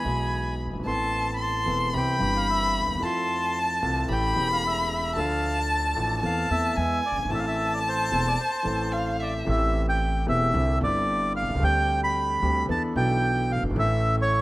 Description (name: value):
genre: tango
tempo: 112 BPM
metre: 4/4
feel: rubato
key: A minor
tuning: A4 = 441 Hz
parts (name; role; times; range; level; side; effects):
- bandoneon; melody; 0.0-14.4 s; C5 to C6; -28 LUFS; right 1 dB; tape echo
- warm violin; second line; 0.0-9.5 s; E5 to C6; -26 LUFS; left 1 dB; none
- warm concert grand piano; accompaniment; 0.0-14.4 s; E1 to A4; -29 LUFS; left 1 dB; none
- upright bass; bass; 0.0-14.4 s; E1 to F2; -29 LUFS; equal; none
room: light reverb, studio ambience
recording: rough home demo mix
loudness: -22 LUFS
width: side -18 dB against mid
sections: 0.0-9.5 A section; 9.5-14.4 A section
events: none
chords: 0.0 E; 0.9 Amadd9; 1.9 Cmaj7; 3.0 Fmaj7; 4.1 A7; 5.2 Dm; 6.2 Am/E; 6.8 E; 7.3 Am; 9.5 Am7; 10.6 Cadd9; 11.6 Gsus4/D; 12.7 E7sus4; 13.8 A